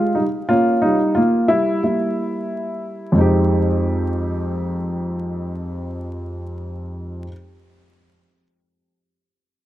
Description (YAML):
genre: hip hop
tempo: 90 BPM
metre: 4/4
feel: swing 58% on 16ths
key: F minor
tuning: A4 = 440 Hz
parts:
  - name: dark baby grand piano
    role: accompaniment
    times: 0.0-7.3 s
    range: F2 to G4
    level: -18 LUFS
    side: equal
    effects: none
room: moderate plate reverb, RT60 2.8 s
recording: dark, warm production, vinyl crackle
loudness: -17 LUFS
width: side -14 dB against mid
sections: 0.0-3.2 A section; 3.2-5.8 B section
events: grand piano solo 0.0-3.2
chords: 0.5 Gm7b5; 1.8 Gm6; 3.2 Fm7